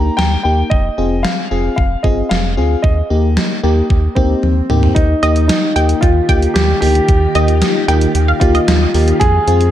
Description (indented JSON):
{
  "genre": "synth-pop",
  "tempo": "113 BPM",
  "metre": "4/4",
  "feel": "straight",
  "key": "Eb major",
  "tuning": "A4 = 440 Hz",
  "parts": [
    { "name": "dark baby grand piano", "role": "melody", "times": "0.0-9.7 s", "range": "C4 to Bb5", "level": "-18 LUFS", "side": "equal", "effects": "dub echo" },
    { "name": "FM electric piano with soft pad layer", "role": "accompaniment", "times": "0.0-9.7 s", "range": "Bb3 to Ab4", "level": "-19 LUFS", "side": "left 2 dB", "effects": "chorus, dub echo" },
    { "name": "round analog bass", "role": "bass", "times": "0.0-9.7 s", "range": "F1 to F2", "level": "-15 LUFS", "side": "equal", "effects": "none" },
    { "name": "gated 80s digital drum machine", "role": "drums", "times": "0.2-9.7 s", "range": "hi-hat, kick drum, snare drum, toms", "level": "-17 LUFS", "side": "equal", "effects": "gated reverb, gated reverb snare, dub echo" },
    { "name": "soft string machine", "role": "sustained chords", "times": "5.4-9.7 s", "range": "Eb3 to G4", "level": "-22 LUFS", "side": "equal", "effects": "phaser, ensemble chorus" },
    { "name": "wide unison pluck", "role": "second line", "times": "5.2-8.7 s", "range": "Eb5 to G5", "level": "-21 LUFS", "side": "right 2 dB", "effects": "dub echo" }
  ],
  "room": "light reverb",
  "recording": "echo-heavy mix",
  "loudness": "-11 LUFS",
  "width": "side -11 dB against mid",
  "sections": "0.0-5.0 A section; 5.0-9.7 B section",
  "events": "drum fill 4.4-5.0",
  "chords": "0.0 Eb; 0.7 Fm; 2.8 Eb; 5.0 Ebadd9; 9.2 Fm",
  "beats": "0.18 | 0.71 1.25 1.78 2.31 | 2.84 3.37 3.90 4.43 | 4.96 5.49 6.02 6.55 | 7.09 7.62 8.15 8.68 | 9.21"
}